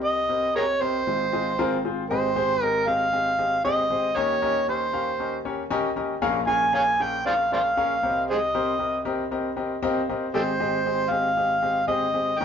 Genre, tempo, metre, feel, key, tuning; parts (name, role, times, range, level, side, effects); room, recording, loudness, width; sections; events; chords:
soul; 117 BPM; 4/4; straight; Ab major; A4 = 440 Hz
overdriven harmonica; melody; 0.0-12.4 s; G4 to Ab5; -22 LUFS; right 1 dB
clear grand piano; accompaniment; 0.0-12.4 s; Ab1 to G5; -26 LUFS; left 3 dB
moderate studio reverb, RT60 0.7 s; band playing live in one room, nothing above 7.5 kHz; -22 LUFS; side -7 dB against mid
0.0-2.1 A section; 2.1-12.4 B section
grand piano fill 9.3-10.3
0.0 Cm7; 1.1 Ab6; 2.1 Abmaj7; 4.2 Eb7; 6.2 Bbm7; 8.0 Cm7; 10.3 Abmaj7